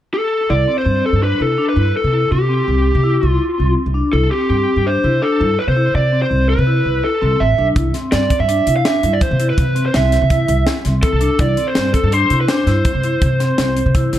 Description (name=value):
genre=progressive instrumental, band music in an uneven meter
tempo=165 BPM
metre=5/4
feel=straight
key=C major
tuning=A4 = 440 Hz
part: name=lead guitar through a small cranked amp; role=melody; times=0.1-14.2 s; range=G4 to F5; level=-18 LUFS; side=right 1 dB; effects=overdrive, tape echo
part: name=vibraphone with medium mallets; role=arpeggios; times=0.5-14.2 s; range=C4 to E4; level=-21 LUFS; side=left 2 dB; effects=none
part: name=upright bass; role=bass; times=0.5-14.2 s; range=A1 to C3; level=-17 LUFS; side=equal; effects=none
part: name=crisp fusion drum kit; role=drums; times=7.8-14.2 s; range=hi-hat, kick drum, snare drum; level=-20 LUFS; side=equal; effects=none
room=little or no reverb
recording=dark, warm production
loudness=-13 LUFS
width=side -12 dB against mid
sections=0.5-14.2 A section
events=none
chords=0.5 C